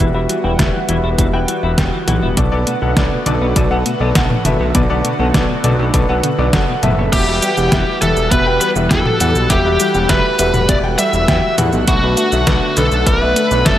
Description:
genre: synthwave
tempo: 101 BPM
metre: 4/4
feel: straight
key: E minor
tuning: A4 = 440 Hz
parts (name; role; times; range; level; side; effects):
- lush unison pad; sustained chords; 0.0-13.8 s; D3 to F#5; -22 LUFS; right 1 dB; chorus, phaser, sidechain pumping
- warbly dusty pluck; arpeggios; 0.0-13.8 s; D3 to B3; -25 LUFS; equal; none
- clean electric guitar; riff; 0.0-7.0 s; B2 to E4; -24 LUFS; left 3 dB; ensemble chorus, low-pass filter, tape echo
- clear baby grand piano; stabs; 0.0-13.8 s; G3 to G5; -21 LUFS; left 2 dB; vintage 12-bit sampler grit, low-pass filter, tape echo
- fat analog bass; bass; 0.0-13.8 s; E1 to E2; -18 LUFS; equal; none
- detuned 8-bit digital drum machine; drums; 0.0-13.8 s; cabasa, crash cymbal, hi-hat, snare drum, toms; -19 LUFS; equal; overdrive, gated reverb
- electronic kick drum; drums; 0.6-13.8 s; none; -18 LUFS; equal; overdrive
- bluesy overdriven lead guitar; melody; 7.1-13.8 s; F#4 to E5; -17 LUFS; equal; distortion, digital delay
- string machine, violins; second line; 7.1-13.8 s; F#4 to E5; -24 LUFS; equal; ensemble chorus
room: light reverb, digital ambience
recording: none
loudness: -12 LUFS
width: side -12 dB against mid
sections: 0.0-7.1 A section; 7.1-13.8 B section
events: none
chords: 0.0 Emadd9; 2.4 Bm7; 7.1 Emadd9; 11.9 Bm7

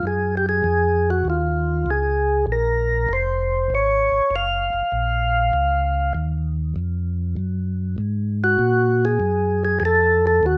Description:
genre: soul jazz organ trio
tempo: 98 BPM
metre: 4/4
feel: swing 69% on 8ths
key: unclear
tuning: A4 = 441 Hz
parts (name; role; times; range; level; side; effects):
- percussive tonewheel organ; melody; 0.0-10.6 s; F4 to F5; -21 LUFS; equal; slow rotary speaker
- mellow tonewheel organ; bass; 0.0-10.6 s; F1 to Bb2; -25 LUFS; equal; slow rotary speaker
room: moderate large studio reverb, RT60 0.9 s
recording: none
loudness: -21 LUFS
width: mono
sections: 0.0-10.6 A section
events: none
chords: 0.0 Ebm9; 4.9 Bbm; 7.4 Gb; 9.8 F7

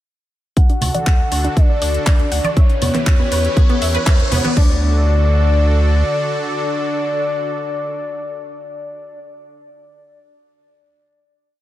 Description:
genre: progressive house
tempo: 120 BPM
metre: 4/4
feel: straight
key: D major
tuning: A4 = 440 Hz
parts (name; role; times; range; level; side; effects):
- soft octave-layered synth lead; melody; 0.6-9.2 s; C#5 to F#5; -22 LUFS; left 2 dB; chorus, digital delay
- supersaw pad; sustained chords; 0.6-9.2 s; D3 to B4; -26 LUFS; right 1 dB; sidechain pumping
- wide unison pluck; arpeggios; 0.6-4.8 s; B3 to F#5; -24 LUFS; equal; sidechain pumping, tape echo
- round analog bass; bass; 0.6-6.0 s; D2 to E2; -17 LUFS; equal; sidechain pumping
- deep house drum kit; drums; 0.6-4.7 s; crash cymbal, handclaps, hi-hat; -25 LUFS; left 1 dB; overdrive
- electronic kick drum; drums; 0.6-4.7 s; none; -13 LUFS; equal; none
- riser; sound effects; 2.0-4.6 s; none; -29 LUFS; right 1 dB; none
- congas and woodblock; percussion; 0.8-4.5 s; none; -24 LUFS; right 2 dB; sidechain pumping on perc
room: little or no reverb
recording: none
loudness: -14 LUFS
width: side -14 dB against mid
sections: 0.6-4.6 build; 4.6-8.6 final chord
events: build-up 0.6-4.6; filter sweep on synth pluck 0.6-4.6; filter sweep on soft synth lead 0.6-4.6; riser 2.0-4.6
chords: 0.6 D; 2.6 Em; 4.6 D

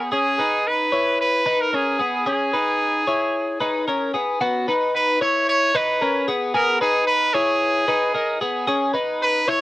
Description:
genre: indie pop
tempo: 112 BPM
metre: 4/4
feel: straight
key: unclear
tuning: A4 = 440 Hz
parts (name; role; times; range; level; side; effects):
- twelve-string electric guitar; arpeggios; 0.0-9.6 s; B3 to C#5; -21 LUFS; left 1 dB; cassette tape
- brilliant trumpet; melody; 0.1-9.6 s; G#4 to C#5; -20 LUFS; right 1 dB; cassette tape
room: moderate booth ambience, RT60 0.2 s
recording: home recording on cassette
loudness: -18 LUFS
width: side -17 dB against mid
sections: 0.0-4.4 A section; 4.4-9.6 B section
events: none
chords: 0.1 C#madd9; 4.4 F#sus4; 6.5 G#m

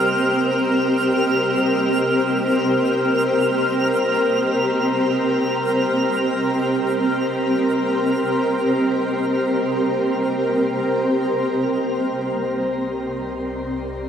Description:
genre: ambient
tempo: free time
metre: none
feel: none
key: C minor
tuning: A4 = 440 Hz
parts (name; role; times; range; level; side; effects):
- granular cloud pad; sustained chords; 0.0-14.1 s; C4 to Eb5; -18 LUFS; equal; built-in reverb
- twinkling granular texture; texture; 0.0-11.8 s; F6; -26 LUFS; right 1 dB; built-in reverb
- warm sub bass; bass; 11.8-14.1 s; C2; -40 LUFS; equal; none
room: wet shimmer reverb, RT60 6.3 s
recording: none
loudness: -18 LUFS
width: side -8 dB against mid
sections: 0.0-11.8 A section; 11.8-14.1 B section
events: none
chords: 0.0 Cm7; 11.8 Cm9

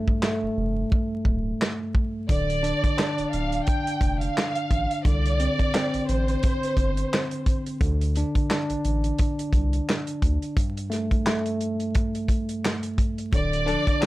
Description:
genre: hip hop, boom-bap hip-hop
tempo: 87 BPM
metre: 4/4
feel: swing 57% on 16ths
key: D minor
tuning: A4 = 440 Hz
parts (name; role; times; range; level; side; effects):
- mellow tine electric piano; accompaniment; 0.0-14.1 s; G2 to D4; -28 LUFS; equal; fast stereo tremolo, high-pass filter, low-pass filter
- warm soul drum kit; drums; 0.1-14.1 s; handclaps, hi-hat, kick drum, snare drum; -24 LUFS; equal; none
- soft dub sub bass; bass; 0.4-13.8 s; D1 to D2; -26 LUFS; equal; tube saturation
- rich studio violin section; melody; 2.3-7.3, 13.3-14.1 s; C5 to G5; -28 LUFS; right 1 dB; high-pass filter, low-pass filter, analog delay
- warm studio string section; stabs; 13.7-13.8 s; F3 to A4; -32 LUFS; left 1 dB; high-pass filter, low-pass filter
room: little or no reverb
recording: vinyl crackle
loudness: -22 LUFS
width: side -17 dB against mid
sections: 0.0-13.3 A section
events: break 0.0-2.3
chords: 0.0 Gsus2; 2.3 Dm; 5.0 Csus2; 7.8 D5; 10.6 Gsus2; 13.3 Dm

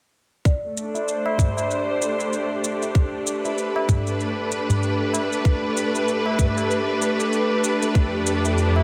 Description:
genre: organic downtempo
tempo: 96 BPM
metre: 4/4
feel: swing 58% on 16ths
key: D dorian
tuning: A4 = 440 Hz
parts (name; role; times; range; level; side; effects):
- electronic kick drum; drums; 0.5-8.1 s; none; -20 LUFS; equal; none
- shaker; drums; 0.5-8.7 s; none; -33 LUFS; equal; none
- quartz singing bowl; texture; 0.5-8.8 s; D5; -35 LUFS; equal; none
- rich studio string section; sustained chords; 0.6-8.8 s; F2 to C5; -24 LUFS; equal; sidechain pumping, low-pass filter
- tabla; percussion; 0.9-8.8 s; none; -30 LUFS; equal; none
room: wet huge ambient reverb, RT60 7.8 s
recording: dreamy mix soaked in reverb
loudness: -22 LUFS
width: mono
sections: 0.5-8.8 A section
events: none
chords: 0.5 D5; 3.0 A9sus4; 8.0 F6

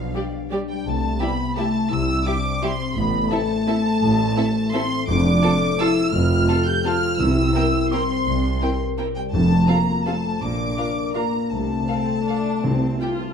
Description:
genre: classical, orchestral ballroom waltz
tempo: 151-184 BPM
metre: 3/4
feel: rubato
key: F major from 5.1 s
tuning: A4 = 440 Hz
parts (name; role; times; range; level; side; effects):
- warm chamber violin section; melody; 0.0-13.3 s; F5 to G6; -31 LUFS; right 1 dB; none
- mellow hollow flute section; second line; 0.0-13.3 s; F5 to G6; -28 LUFS; equal; none
- dark French horn section; sustained chords; 0.0-13.3 s; F3 to G4; -24 LUFS; left 1 dB; none
- concert harp; arpeggios; 0.0-13.3 s; F2 to D5; -27 LUFS; left 7 dB; none
- clear chamber double bass section; bass; 0.0-12.9 s; F1 to C2; -26 LUFS; right 3 dB; none
- dark chamber cello section; bass; 0.0-12.9 s; F2 to C3; -26 LUFS; equal; none
- warm chamber viola section; accompaniment; 0.1-13.3 s; G3 to G4; -30 LUFS; right 1 dB; none
- warm chamber violin section; second line; 0.2-13.1 s; G4 to A5; -31 LUFS; left 1 dB; none
- timpani; percussion; 5.1-9.8, 12.6-13.2 s; F2 to C3; -27 LUFS; right 1 dB; none
room: wet stone room reverb, RT60 0.9 s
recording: dark, warm production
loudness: -18 LUFS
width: side -7 dB against mid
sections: 0.0-13.3 A section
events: none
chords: 0.0 G7/B; 0.9 C; 3.0 Am; 5.1 F; 7.2 C7; 9.3 F; 10.4 Bb; 11.5 F/C; 12.6 C5

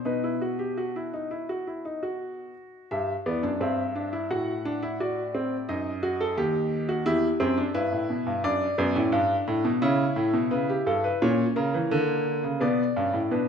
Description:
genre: classical, baroque-style 3-part fugue for grand piano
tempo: 86 BPM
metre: 4/4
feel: straight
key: E minor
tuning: A4 = 441 Hz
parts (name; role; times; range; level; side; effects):
- warm grand piano; solo; 0.0-13.5 s; D#2 to F#5; -24 LUFS; equal; none
room: moderate recital hall reverb, RT60 1.4 s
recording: none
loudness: -24 LUFS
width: side -7 dB against mid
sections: 0.0-2.9 A section; 2.9-13.5 B section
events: none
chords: 0.1 B; 2.9 Em; 4.3 F#m7b5/A; 5.7 D#m/F#; 7.1 Em; 8.4 Bm/F#; 9.8 C#m7b5; 11.2 A#m; 12.6 Bm

